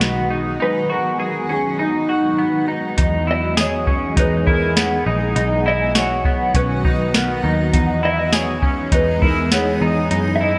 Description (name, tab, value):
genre	dream pop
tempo	101 BPM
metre	4/4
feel	straight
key	E lydian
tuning	A4 = 440 Hz
part	granular cloud pad	sustained chords	0.0-10.6 s	D#3 to G#4	-26 LUFS	equal	built-in reverb, shimmer reverb
part	semi-hollow electric guitar	arpeggios	0.0-10.6 s	B3 to G#4	-24 LUFS	equal	analog chorus, shimmer reverb, delay
part	vintage muted picked electric bass	bass	0.0-10.6 s	A#1 to F#2	-25 LUFS	equal	none
part	soft vintage rhythm box	drums	0.0-10.2 s	hi-hat, kick drum, snare drum, tambourine	-21 LUFS	equal	none
part	mellow electric guitar	melody	0.6-10.6 s	D#4 to E5	-25 LUFS	equal	lush chorus, shimmer reverb, delay
part	large celesta	texture	0.6-10.3 s	C#5 to G#5	-34 LUFS	equal	none
room	wet lush hall reverb, RT60 2.1 s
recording	bright 1980s-style digital production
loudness	-18 LUFS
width	mono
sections	0.0-3.0 A section; 3.0-10.6 B section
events	none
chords	0.0 B6; 3.0 Emaj7; 5.4 B; 7.7 Emaj7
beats	0.01 | 0.60 1.20 1.79 2.39 | 2.98 3.58 4.17 4.76 | 5.36 5.95 6.55 7.14 | 7.73 8.33 8.92 9.52 | 10.11